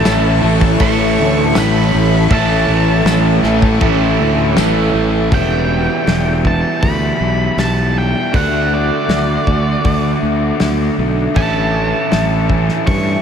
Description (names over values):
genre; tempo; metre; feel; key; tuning
rock, shoegaze and dream pop; 79 BPM; 4/4; straight; A mixolydian; A4 = 440 Hz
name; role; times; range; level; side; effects
octave-fuzz lead guitar; melody; 0.0-13.2 s; D5 to C#6; -22 LUFS; right 2 dB; distortion, diffuse ambient delay
string machine, violins; sustained chords; 0.0-5.3 s; E4 to A5; -22 LUFS; left 1 dB; ensemble chorus
cranked stack guitar; riff; 0.0-5.3 s; A2 to A3; -20 LUFS; left 1 dB; overdrive
overdriven electric guitar; riff; 0.0-13.2 s; E2 to F#4; -20 LUFS; left 8 dB; wide subtle chorus
overdriven semi-hollow guitar; riff; 0.0-13.2 s; A2 to F#4; -19 LUFS; right 7 dB; reverse reverb
fuzz fingered electric bass; bass; 0.0-13.2 s; E1 to G2; -17 LUFS; equal; overdrive
loose indie drum kit; drums; 0.1-13.1 s; crash cymbal, hi-hat, kick drum, snare drum; -20 LUFS; left 1 dB; none
tambourine; percussion; 0.1-4.7 s; none; -33 LUFS; left 10 dB; none
room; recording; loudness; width
moderate huge ambient reverb, RT60 6.0 s; dreamy mix soaked in reverb; -12 LUFS; side -7 dB against mid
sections
0.0-5.3 A section; 5.3-13.2 B section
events
none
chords
0.0 A; 5.3 Em; 8.3 D; 11.4 A